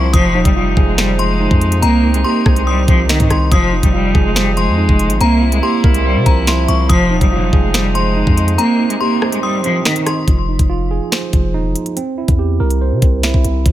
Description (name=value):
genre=hip hop, drill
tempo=142 BPM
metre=4/4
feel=half-time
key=F minor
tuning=A4 = 442 Hz
part: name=clear cello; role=melody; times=0.0-10.0 s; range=Eb3 to Bb3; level=-17 LUFS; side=equal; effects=low-pass filter
part: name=metallic FM bell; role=second line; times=0.0-10.3 s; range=Bb5 to Eb6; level=-22 LUFS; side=left 5 dB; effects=chorus, ping-pong delay
part: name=tine electric piano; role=accompaniment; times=0.0-13.7 s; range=F3 to C6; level=-20 LUFS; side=right 5 dB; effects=phaser, low-pass filter
part: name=muted French horn section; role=sustained chords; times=0.0-10.3 s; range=C3 to E4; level=-25 LUFS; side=left 1 dB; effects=none
part: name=long sustained 808-style bass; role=bass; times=0.0-13.7 s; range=Eb1 to C3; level=-16 LUFS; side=equal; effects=none
part: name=drill drum kit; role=drums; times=0.1-13.7 s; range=finger snaps, hi-hat, kick drum, rim click, snare drum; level=-14 LUFS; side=equal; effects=none
room=digital ambience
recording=none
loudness=-12 LUFS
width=side -13 dB against mid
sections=0.0-10.3 A section; 10.3-13.7 B section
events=break 8.6-10.3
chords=0.1 Fm7; 1.8 Cm; 3.5 Fm7; 5.2 C7; 6.9 Fm7; 8.6 Cm; 10.3 Fm7; 12.0 C7